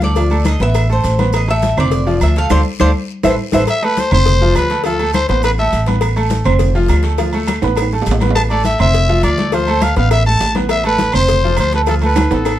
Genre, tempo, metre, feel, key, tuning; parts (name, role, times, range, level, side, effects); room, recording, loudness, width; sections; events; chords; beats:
latin, salsa; 205 BPM; 4/4; straight; A minor; A4 = 440 Hz
Cuban tres; melody; 0.0-3.6 s; B4 to F5; -19 LUFS; left 1 dB
clear concert grand piano; accompaniment; 0.0-12.6 s; F3 to C6; -19 LUFS; right 2 dB
upright bass; bass; 0.0-12.6 s; F1 to D2; -16 LUFS; equal
congas; percussion; 0.0-12.6 s; -22 LUFS; left 3 dB
cowbell; percussion; 0.0-12.6 s; -25 LUFS; left 9 dB
guiro; percussion; 0.0-12.6 s; -35 LUFS; left 7 dB
maracas; percussion; 0.0-12.6 s; -35 LUFS; right 3 dB
agogo bells and timbales; percussion; 0.2-12.6 s; -24 LUFS; right 6 dB
claves; percussion; 0.5-12.6 s; -31 LUFS; equal
growling trumpet; melody; 3.7-5.9, 8.4-12.6 s; A4 to A5; -17 LUFS; left 2 dB
light reverb; dark, warm production; -12 LUFS; side -12 dB against mid
0.0-3.7 A section; 3.7-12.6 B section
Cuban tres solo 0.0-3.7; band accent 2.5-3.7; drum fill 2.8-3.7, 7.6-8.4, 12.2-12.6
0.2 Dm; 0.7 Amadd9; 1.9 F; 2.5 Dm7; 3.1 Amadd9; 3.7 Am; 4.3 F; 4.8 Dm; 5.4 Amadd9; 6.6 F; 7.2 Dm; 7.8 Amadd9; 8.9 Fmaj7; 9.5 Dm7; 10.1 Amadd9; 11.3 F; 11.9 Dm
| 0.16 0.46 0.75 1.04 | 1.33 1.63 1.92 2.21 | 2.51 2.80 3.09 3.38 | 3.68 3.97 4.26 4.56 | 4.85 5.14 5.43 5.73 | 6.02 6.31 6.60 6.90 | 7.19 7.48 7.78 8.07 | 8.36 8.65 8.95 9.24 | 9.53 9.82 10.12 10.41 | 10.70 10.99 11.29 11.58 | 11.87 12.16 12.46